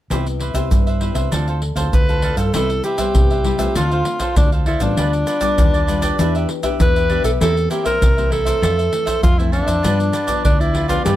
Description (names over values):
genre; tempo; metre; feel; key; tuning
samba and choro; 99 BPM; 4/4; straight; C major; A4 = 440 Hz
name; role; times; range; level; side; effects
cavaquinho; accompaniment; 0.1-11.2 s; D4 to F5; -26 LUFS; right 4 dB; none
nylon-string guitar; accompaniment; 0.1-11.2 s; F2 to A4; -26 LUFS; left 6 dB; none
hollow-body short-scale fingered electric bass; bass; 0.1-11.2 s; A1 to G2; -20 LUFS; equal; none
tube shaker, surdo and pandeiro; percussion; 0.1-11.2 s; none; -19 LUFS; equal; none
breathy alto saxophone; melody; 1.9-11.2 s; D4 to B4; -20 LUFS; equal; none
room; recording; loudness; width
little or no reverb; close, detailed microphones; -15 LUFS; side -13 dB against mid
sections
0.1-2.5 A section; 2.5-11.2 B section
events
none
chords
0.1 Cmaj7; 1.3 Dm7; 2.5 Cmaj7; 3.8 Dm7; 5.0 G7/D; 6.2 Em7; 7.4 C7/E; 8.6 Fmaj7; 9.8 G7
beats
| 0.11 0.72 1.32 1.93 | 2.54 3.15 3.75 4.36 | 4.97 5.58 6.19 6.80 | 7.41 8.01 8.62 9.23 | 9.84 10.45 11.06